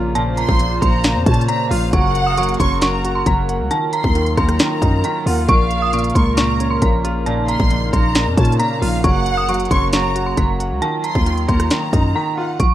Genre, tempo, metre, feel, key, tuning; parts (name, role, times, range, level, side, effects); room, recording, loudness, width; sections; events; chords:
hip hop, trap; 135 BPM; 4/4; half-time; Bb minor; A4 = 437 Hz
dark detuned synth bell; melody; 0.0-12.7 s; A5 to Eb6; -22 LUFS; right 2 dB; chorus, tremolo, low-pass filter
warm concert grand piano; accompaniment; 0.0-12.6 s; Bb2 to Gb5; -23 LUFS; equal; low-pass filter
hollow soft pad; sustained chords; 0.0-12.6 s; Db3 to C5; -25 LUFS; equal; chorus
growling 808-style bass; bass; 0.0-12.7 s; Gb1 to Bb2; -19 LUFS; equal
trap drum kit; drums; 0.2-12.7 s; hi-hat, kick drum, rim click, snare drum; -18 LUFS; equal
warm studio violin section; second line; 0.4-12.6 s; F5 to Db6; -24 LUFS; equal; digital delay
light reverb; rough home demo mix; -14 LUFS; side -12 dB against mid
0.0-12.6 A section
break 12.2-12.6
0.0 Bbm; 1.9 Gb; 3.7 Ebmadd9; 5.5 Bbm; 9.0 Gb; 10.8 Ebmadd9